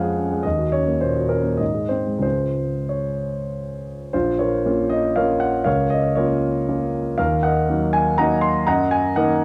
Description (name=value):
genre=classical, romantic character piece for solo piano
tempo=90-126 BPM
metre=3/4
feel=rubato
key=Db major, Bb minor from 4.1 s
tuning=A4 = 440 Hz
part: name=warm grand piano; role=solo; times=0.0-9.4 s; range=Bb1 to C6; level=-21 LUFS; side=equal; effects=none
room=light reverb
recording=close, detailed microphones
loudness=-21 LUFS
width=mono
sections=0.0-4.1 A section; 4.1-9.4 B section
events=none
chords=0.4 Ebm7; 1.6 Ab; 2.2 Db; 4.1 Bbm; 5.7 Bbm/Db; 7.2 Ebm; 8.7 Ebm/Gb